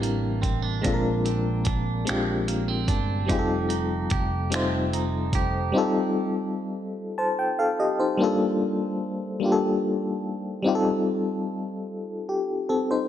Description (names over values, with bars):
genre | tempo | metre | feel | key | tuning
slow six-eight R&B | 49 BPM (dotted quarters) | 6/8 | straight | unclear | A4 = 436 Hz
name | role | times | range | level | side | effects
clean electric guitar | second line | 0.0-6.3 s | Bb2 to G4 | -31 LUFS | right 7 dB | none
FM electric piano with tremolo | accompaniment | 0.0-13.1 s | G3 to A5 | -24 LUFS | left 2 dB | none
mellow fretless electric bass | bass | 0.0-5.7 s | F1 to Bb1 | -28 LUFS | equal | none
dusty soul sampler-style drum kit | drums | 0.0-5.5 s | finger snaps, hi-hat, kick drum | -29 LUFS | equal | none
room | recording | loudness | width
light reverb, digital ambience | dark, warm production | -23 LUFS | side -10 dB against mid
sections
0.0-5.8 A section; 5.8-13.1 B section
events
none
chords
0.0 C9; 0.9 Bb9; 3.3 F9; 8.2 Gm9; 10.6 F9